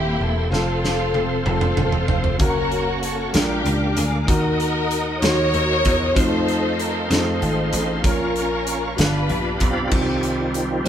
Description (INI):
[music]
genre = slow gospel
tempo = 64 BPM (dotted quarters)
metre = 6/8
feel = straight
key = unclear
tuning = A4 = 440 Hz
[part]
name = warm symphonic string section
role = melody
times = 0.0-9.9 s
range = Bb3 to Db5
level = -23 LUFS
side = left 1 dB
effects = none
[part]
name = warm grand piano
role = accompaniment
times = 0.0-10.9 s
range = G2 to C6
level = -26 LUFS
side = equal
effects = none
[part]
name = bright tonewheel organ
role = sustained chords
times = 0.0-10.9 s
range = Eb3 to Eb6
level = -27 LUFS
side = right 2 dB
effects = slow rotary speaker, overdrive, chorus vibrato
[part]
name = dry thumbed slap bass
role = bass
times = 0.0-10.9 s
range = Eb1 to F2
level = -24 LUFS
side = equal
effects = none
[part]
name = modern studio drum kit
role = drums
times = 0.5-10.9 s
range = crash cymbal, hi-hat, kick drum, snare drum, toms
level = -23 LUFS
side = right 1 dB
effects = none
[sound]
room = moderate studio reverb, RT60 0.8 s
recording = band playing live in one room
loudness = -18 LUFS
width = side -9 dB against mid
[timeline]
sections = 0.0-9.9 A section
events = drum fill 0.5-2.4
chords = 0.0 C7; 0.5 F; 2.4 Gb; 3.3 Bb7; 4.3 Ebm; 6.2 F7; 8.0 Bbm; 9.0 G7; 9.9 Cm